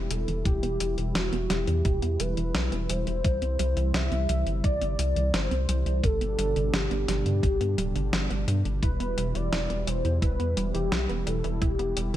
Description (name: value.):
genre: synthwave.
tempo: 86 BPM.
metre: 4/4.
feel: straight.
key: E minor.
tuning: A4 = 441 Hz.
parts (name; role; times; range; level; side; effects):
warm velvety synth lead; melody; 0.0-12.2 s; F#4 to E5; -31 LUFS; left 1 dB; chorus, ping-pong delay.
brassy analog pad; sustained chords; 0.0-12.2 s; B2 to E4; -34 LUFS; equal; chorus, vintage 12-bit sampler grit, sidechain pumping.
wide unison pluck; arpeggios; 0.0-12.2 s; D3 to E4; -36 LUFS; right 3 dB; ping-pong delay.
round analog bass; bass; 0.0-12.2 s; D1 to G2; -28 LUFS; equal; tube saturation.
clean 12-bit digital drum machine; drums; 0.1-12.2 s; hi-hat, snare drum; -31 LUFS; left 1 dB; gated reverb.
electronic kick drum; drums; 0.5-11.8 s; none; -26 LUFS; equal; none.
room: light reverb.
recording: none.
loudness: -24 LUFS.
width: side -12 dB against mid.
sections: 0.0-12.2 A section.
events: filter sweep on synth arpeggio sound 0.0-12.2.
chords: 0.0 Em; 3.2 C; 6.0 G; 8.8 Em.